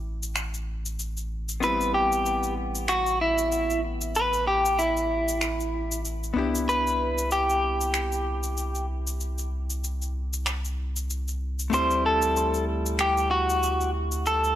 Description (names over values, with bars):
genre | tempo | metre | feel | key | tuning
sunset chillout | 95 BPM | 4/4 | swing 57% on 16ths | A minor | A4 = 440 Hz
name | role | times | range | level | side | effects
hollow-body jazz guitar | accompaniment | 0.0-14.6 s | G3 to G4 | -32 LUFS | moving between left 4 dB and right 8 dB | auto-pan, low-pass filter
round analog bass | bass | 0.0-14.6 s | A1 to D2 | -31 LUFS | equal | none
electronic cabasa and finger snaps | drums | 0.2-14.5 s | none | -31 LUFS | left 1 dB | overdrive
clean electric guitar | melody | 1.6-14.6 s | E4 to C5 | -24 LUFS | equal | tape echo
room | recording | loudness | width
light reverb | dry, gritty hardware recording | -24 LUFS | side -12 dB against mid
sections
0.0-14.6 A section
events
none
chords
0.0 Am9; 6.4 Cmaj7; 11.7 D7sus4